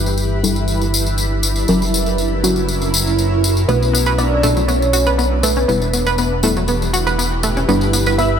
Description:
progressive house; 120 BPM; 4/4; straight; B minor; A4 = 439 Hz
shimmering ambient pad; sustained chords; 0.0-8.4 s; E3 to B4; -22 LUFS; right 2 dB; chorus, built-in reverb, phaser
deep mellow chord stab; stabs; 0.0-8.4 s; G2 to B4; -22 LUFS; left 1 dB; chorus, dub echo
fat analog bass; bass; 0.0-8.4 s; E1 to B1; -19 LUFS; equal
tambourine; percussion; 0.1-8.3 s; -22 LUFS; left 2 dB
warm velvety synth lead; melody; 3.7-8.4 s; B4 to E5; -21 LUFS; equal; chorus, tremolo, dub echo
soft round pluck; second line; 3.7-8.4 s; B4 to E5; -27 LUFS; equal
analog pluck; arpeggios; 3.7-8.3 s; F#3 to B4; -20 LUFS; right 1 dB; chorus, dub echo
light reverb, digital ambience; -14 LUFS; side -8 dB against mid
0.0-8.4 A section
0.0 G6; 1.7 F#7; 3.7 Bm7; 5.7 Em; 7.7 G6
0.18 0.69 1.19 | 1.69 2.19 2.69 3.19 | 3.69 4.18 4.68 5.18 | 5.68 6.18 6.68 7.18 | 7.68 8.19

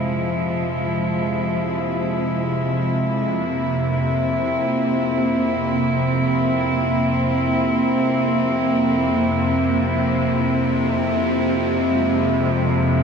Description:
dark ambient drone; free time; F harmonic minor; A4 = 440 Hz
warm chamber cello section; sustained chords; 0.0-13.0 s; F3 to E4; -20 LUFS; equal
gamelan-type bossed gongs; arpeggios; 0.0-7.7 s; barely audible
bowed-like drone; drone; 0.0-13.0 s; F2 to C3; -22 LUFS; equal; built-in reverb, phaser
wet plate reverb, RT60 2.8 s; echo-heavy mix, cassette tape; -18 LUFS; side -6 dB against mid
0.0-13.0 A section
0.0 Fm; 3.5 C; 11.3 Fm
free time

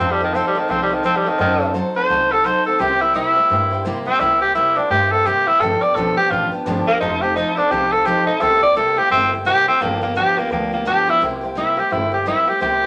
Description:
rockabilly; 171 BPM; 4/4; swing 60% on 8ths; C mixolydian; A4 = 440 Hz
breathy tenor saxophone; melody; 0.0-12.9 s; D#3 to D5; -18 LUFS; equal
honky-tonk upright piano; accompaniment; 0.0-12.9 s; B4 to A5; -30 LUFS; equal
picked steel-string acoustic guitar; accompaniment; 0.0-12.9 s; G2 to A4; -27 LUFS; equal
upright bass; bass; 0.0-12.9 s; F1 to G2; -31 LUFS; equal
moderate studio reverb, RT60 0.7 s; -18 LUFS; mono
0.0-11.2 A section; 11.2-12.9 B section
tenor saxophone solo 0.0-11.2
0.0 F7; 1.4 F#dim7; 2.8 C7; 5.6 G7; 7.0 F7; 8.4 C7; 9.8 G7; 11.2 C7
| 0.00 0.35 0.70 1.05 | 1.40 1.75 2.10 2.46 | 2.81 3.16 3.51 3.86 | 4.21 4.56 4.91 5.26 | 5.61 5.96 6.31 6.66 | 7.01 7.36 7.71 8.06 | 8.41 8.77 9.12 9.47 | 9.82 10.17 10.52 10.87 | 11.22 11.57 11.92 12.27 | 12.62

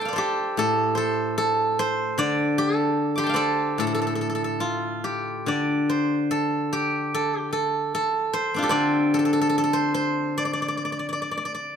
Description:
chinese traditional, Chinese solo plucked strings; 73 BPM; 2/4; rubato; D yu mode; A4 = 440 Hz
steel-string zither; solo; 0.0-11.8 s; A2 to D6; -22 LUFS; equal
moderate recital hall reverb, RT60 1.7 s; -22 LUFS; side -7 dB against mid
0.0-11.8 A section
| 0.59 1.39 | 2.19 2.99 | 3.80 4.63 | 5.48 6.32 | 7.14 7.94 | 8.73 9.55 | 10.38 11.21

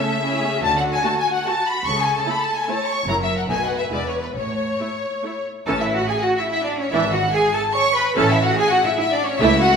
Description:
quick classical-period movement for string orchestra; 145 BPM; 3/4; rubato; A major; A4 = 440 Hz
clear symphonic violin section; melody; 0.0-9.8 s; B4 to C#6; -23 LUFS; left 3 dB
warm symphonic violin section; second line; 0.0-9.8 s; F#4 to C#6; -24 LUFS; left 2 dB
rich symphonic viola section; accompaniment; 0.0-9.6 s; E3 to F#4; -25 LUFS; right 3 dB
rich symphonic cello section; bass; 0.0-9.8 s; E2 to C#5; -23 LUFS; right 2 dB
warm symphonic double bass section; bass; 0.6-9.7 s; E1 to D2; -26 LUFS; right 2 dB
wet scoring stage reverb, RT60 1.6 s; minimal, uncompressed stereo recording; -18 LUFS; side -6 dB against mid
0.0-5.7 A section; 5.7-9.8 B section
0.0 A/C#; 0.6 D; 1.9 A/C#; 3.1 F#7; 3.5 B7; 3.9 E5; 4.4 A; 6.9 E7/G#; 8.2 A
0.22 | 0.63 1.04 1.45 | 1.85 2.27 2.67 | 3.08 3.50 3.92 | 4.36 4.80 5.25 | 5.68 6.10 6.51 | 6.93 7.34 7.76 | 8.17 8.58 8.99 | 9.40

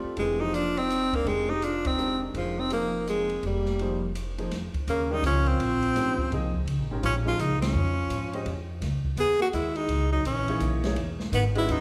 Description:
modal jazz; 167 BPM; 3/4; swing 63% on 8ths; Bb dorian from 4.5 s; A4 = 439 Hz
warm baby grand piano; accompaniment; 0.0-8.5, 10.5-11.8 s; Eb3 to Eb5; -37 LUFS; equal
upright bass; bass; 0.0-11.8 s; Fb1 to Ab2; -32 LUFS; equal
breathy tenor saxophone; melody; 0.2-11.8 s; F3 to Ab4; -29 LUFS; equal
mellow alto saxophone; second line; 0.2-11.8 s; Db3 to G4; -37 LUFS; equal
open jazz drum kit; drums; 0.2-11.8 s; hi-hat, kick drum, ride cymbal, snare drum; -39 LUFS; equal
wet recital hall reverb, RT60 1.5 s; recorded in a church or concert hall; -27 LUFS; mono
0.0-4.5 A section; 4.5-11.8 B section
band accent 1.8, 7.6
0.2 Fm11; 4.5 Bbm9; 8.8 Dbm9
| 0.18 0.54 0.90 | 1.27 1.63 1.99 | 2.35 2.72 3.08 | 3.44 3.80 4.16 | 4.52 4.88 5.24 | 5.60 5.96 6.32 | 6.68 7.04 7.39 | 7.75 8.11 8.47 | 8.83 9.19 9.54 | 9.90 10.26 10.62 | 10.98 11.34 11.70

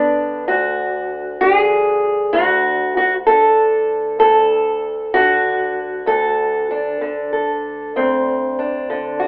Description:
acoustic country blues, solo or duo; 64 BPM (dotted quarters); 12/8; straight; D mixolydian; A4 = 440 Hz
fingerpicked steel-string acoustic guitar; solo; 0.0-9.3 s; D2 to A4; -14 LUFS; equal
moderate large studio reverb, RT60 0.9 s; band playing live in one room, telephone sound, faint mains hum; -14 LUFS; side -27 dB against mid
0.0-9.3 A section
0.5 D7
| 0.48 1.41 2.34 3.28 | 4.21 5.15 6.08 7.02 | 7.95 8.89

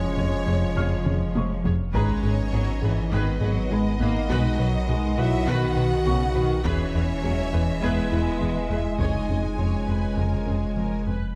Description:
cinematic, hybrid orchestral and electronic film score; 102 BPM; 4/4; straight; A4 = 442 Hz
rich symphonic violin section; melody; 0.0-11.1 s; C#5 to G#5; -40 LUFS; equal
rich symphonic violin section; second line; 0.0-11.0 s; B4 to F#5; -39 LUFS; equal
clear trombone section; sustained chords; 0.0-11.0 s; D#3 to B3; -37 LUFS; equal
warm French horn section; sustained chords; 0.0-11.1 s; B3 to F#4; -34 LUFS; equal
thumb-piano-like synth pluck; arpeggios; 0.0-11.2 s; C#3 to B4; -37 LUFS; equal
round analog bass; riff; 0.0-11.2 s; E2 to B3; -30 LUFS; equal
punchy sub bass; bass; 0.0-11.4 s; E1 to B1; -32 LUFS; equal
rich symphonic cello section; bass; 0.0-11.0 s; C#3 to A#3; -32 LUFS; equal
dark grand piano; texture; 0.0-11.4 s; F#4 to G#6; -40 LUFS; equal; tape echo
clear symphonic viola section; accompaniment; 0.2-11.3 s; F#4 to C#5; -38 LUFS; equal
clear symphonic double bass section; bass; 0.2-11.1 s; E#1 to E#2; -34 LUFS; equal
taiko ensemble; drums; 0.2-9.5 s; -33 LUFS; equal
light reverb; -24 LUFS; mono
0.0-11.4 A section
drum fill 1.1-1.9
0.0 C#/E#; 1.9 G#m; 4.3 B; 6.6 E; 9.0 C#/E#
0.17 0.76 1.35 | 1.94 2.53 3.12 3.71 | 4.29 4.88 5.47 6.06 | 6.65 7.23 7.82 8.41 | 9.00 9.59 10.18 10.76

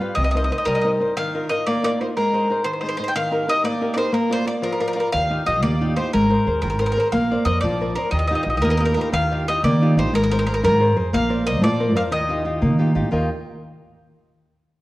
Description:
italian folk, Italian serenade; 120 BPM (dotted quarters); 6/8; straight; Eb major; A4 = 440 Hz
bowl-back mandolin; melody; 0.0-12.8 s; Bb4 to G5; -22 LUFS; equal
flamenco guitar; accompaniment; 0.0-13.3 s; C3 to G5; -22 LUFS; equal
upright bass; bass; 0.2-1.0, 5.1-13.3 s; Ab1 to Eb3; -22 LUFS; equal; tube saturation
wet recital hall reverb, RT60 1.6 s; worn, warbling old tape, cassette tape, warbly pitch drift; -18 LUFS; side -18 dB against mid
0.0-1.2 A section; 1.2-9.1 B section; 9.1-13.1 C section
0.2 Cm7; 1.2 Ebsus2; 2.2 Ab; 3.1 Eb; 4.1 Bb; 5.1 Ebadd9; 6.1 Abadd9; 7.1 Bbadd9; 8.1 Ebadd9; 10.1 Abadd9; 11.1 Bbadd9; 12.1 Ebadd9
| 0.17 0.67 | 1.17 1.66 | 2.16 2.65 | 3.15 3.64 | 4.14 4.64 | 5.14 5.64 | 6.14 6.64 | 7.13 7.63 | 8.13 8.63 | 9.13 9.64 | 10.14 10.64 | 11.13 11.63 | 12.12 12.62 | 13.12

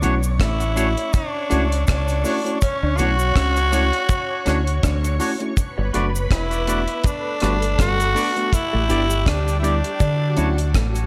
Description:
lovers rock reggae; 81 BPM; 4/4; swing 56% on 16ths; D major; A4 = 440 Hz
string machine, full ensemble; second line; 0.0-11.1 s; F#4 to C#6; -32 LUFS; equal; ensemble chorus, dub echo
tine electric piano; accompaniment; 0.0-10.5 s; F#3 to F#4; -28 LUFS; equal
electric guitar through a small old amp; riff; 0.0-11.0 s; E3 to D5; -34 LUFS; equal
twangy electric guitar; stabs; 0.0-10.5 s; D4 to D5; -32 LUFS; equal; dub echo
deep dub fingered electric bass; bass; 0.0-11.1 s; E1 to D3; -24 LUFS; equal
deep reggae drum kit; drums; 0.0-11.1 s; hi-hat, kick drum, rim click; -25 LUFS; equal; gated reverb
cabasa; percussion; 0.0-11.1 s; -37 LUFS; equal
growling tenor saxophone; melody; 0.4-10.8 s; C#4 to F#4; -26 LUFS; equal; dub echo
studio reverb; -20 LUFS; mono
0.0-11.1 A section
0.0 Dmaj7; 5.6 Gmaj7; 8.5 A7sus4; 10.0 Dmaj7
0.40 1.14 1.88 | 2.62 3.35 4.09 4.83 | 5.57 6.31 7.05 7.79 | 8.53 9.26 10.00 10.74

